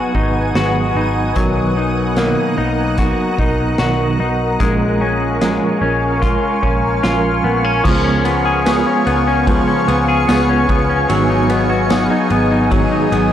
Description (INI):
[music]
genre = dream pop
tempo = 74 BPM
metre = 4/4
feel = straight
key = unclear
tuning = A4 = 440 Hz
[part]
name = mellow electric guitar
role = accompaniment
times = 0.0-13.3 s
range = Ab2 to A#4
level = -20 LUFS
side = right 4 dB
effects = harmonic tremolo, lush chorus
[part]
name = shimmering ambient pad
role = sustained chords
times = 0.0-13.3 s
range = Ab4 to Eb6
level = -20 LUFS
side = right 1 dB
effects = chorus, built-in reverb
[part]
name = clean electric guitar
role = arpeggios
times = 0.0-13.3 s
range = F3 to Ab4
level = -18 LUFS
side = left 4 dB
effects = wide subtle chorus, analog delay
[part]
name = vintage muted picked electric bass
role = bass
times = 0.1-13.3 s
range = Ab1 to Db2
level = -21 LUFS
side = equal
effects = none
[part]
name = vintage drum kit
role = drums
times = 0.1-13.3 s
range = crash cymbal, hi-hat, kick drum, ride cymbal, snare drum, tambourine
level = -22 LUFS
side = equal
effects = none
[sound]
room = light reverb, small room ambience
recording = none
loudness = -13 LUFS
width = side -10 dB against mid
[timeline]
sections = 0.0-7.9 A section; 7.9-13.3 B section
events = none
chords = 0.0 Abm7; 1.4 Bmaj7; 4.6 Bbm7; 7.9 Db7; 11.1 Abm7